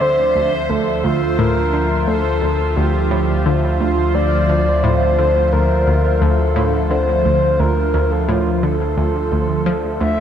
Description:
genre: ambient, sequencer-driven space music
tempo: 87 BPM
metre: 4/4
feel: straight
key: D minor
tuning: A4 = 440 Hz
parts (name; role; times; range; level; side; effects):
- breathy flute-like synth lead; melody; 0.0-10.2 s; F4 to E5; -19 LUFS; equal; wide subtle chorus, tape echo
- phased analog pad; sustained chords; 0.0-10.2 s; D3 to E5; -21 LUFS; right 1 dB; phaser, chorus
- analog pluck; riff; 0.0-10.2 s; D2 to F3; -21 LUFS; equal; chorus, tape echo
- warm sub bass; bass; 0.0-10.2 s; D2; -20 LUFS; equal; none
- bubbling stepped-filter texture; texture; 0.0-10.2 s; C5; -28 LUFS; right 1 dB; chorus, built-in reverb
room: wet spring reverb, RT60 2.5 s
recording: echo-heavy mix, cassette tape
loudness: -14 LUFS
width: side -9 dB against mid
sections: 0.0-10.2 A section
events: filter sweep on synth arpeggio sound 0.0-10.2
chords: 0.0 Dm

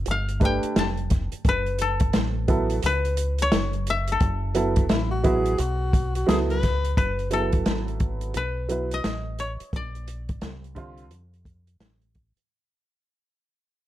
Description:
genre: hip hop, jazz-hop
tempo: 87 BPM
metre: 4/4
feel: swing 63% on 16ths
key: unclear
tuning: A4 = 444 Hz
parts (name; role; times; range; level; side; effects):
- koto; melody; 0.0-12.1 s; A4 to A5; -28 LUFS; left 4 dB; plate reverb
- deep dub fingered electric bass; bass; 0.0-12.4 s; F1 to E#2; -28 LUFS; equal; none
- open jazz drum kit; drums; 0.1-12.5 s; hi-hat, kick drum, snare drum; -24 LUFS; equal; none
- warm upright piano; accompaniment; 0.4-11.0 s; D3 to B4; -26 LUFS; right 3 dB; plate reverb
- breathy tenor saxophone; second line; 4.9-6.9 s; E4 to B4; -29 LUFS; left 4 dB; plate reverb
room: light reverb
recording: none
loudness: -22 LUFS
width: side -13 dB against mid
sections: 0.0-7.0 A section; 7.0-12.5 B section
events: fade-out 7.0-12.5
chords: 0.1 G7; 1.5 F#m7; 7.0 F#m11; 9.7 A#add9

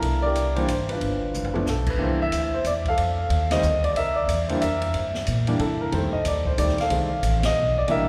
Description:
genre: jazz piano trio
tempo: 183 BPM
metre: 3/4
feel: swing 63% on 8ths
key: C mixolydian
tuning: A4 = 439 Hz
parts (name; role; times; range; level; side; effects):
- clear baby grand piano; melody; 0.0-8.1 s; Eb3 to F5; -26 LUFS; equal; none
- upright bass; bass; 0.0-8.1 s; G1 to C3; -28 LUFS; equal; none
- open jazz drum kit; drums; 0.0-8.0 s; crash cymbal, hi-hat, kick drum, ride cymbal, snare drum, toms; -34 LUFS; equal; none
room: wet church reverb, RT60 3.4 s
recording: recorded in a church or concert hall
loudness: -23 LUFS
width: mono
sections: 0.0-2.0 A section; 2.0-8.1 A section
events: drum fill 1.3-1.7; band accent 3.5, 7.4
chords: 0.0 C9; 1.0 G9; 2.0 Cadd9; 3.0 F7; 4.0 C9; 4.9 Gm; 5.6 C7; 5.9 F9 (rootless); 6.9 F7#11

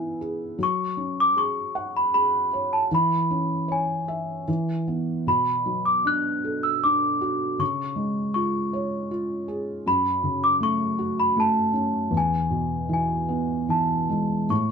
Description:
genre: children's music, lullaby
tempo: 78 BPM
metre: 3/4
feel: rubato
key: unclear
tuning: A4 = 440 Hz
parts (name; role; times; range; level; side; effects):
- celesta; melody; 0.0-14.7 s; G#5 to F#6; -23 LUFS; equal; none
- felt-muted upright piano; accompaniment; 0.0-14.7 s; E2 to F#5; -26 LUFS; right 1 dB; none
room: moderate studio reverb, RT60 0.6 s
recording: dark, warm production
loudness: -22 LUFS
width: side -6 dB against mid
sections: 0.0-14.5 A section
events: none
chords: 0.0 E; 0.6 F#sus2; 2.9 E6; 4.5 E; 5.3 Bm7; 7.6 C#; 9.9 F#m; 12.1 E

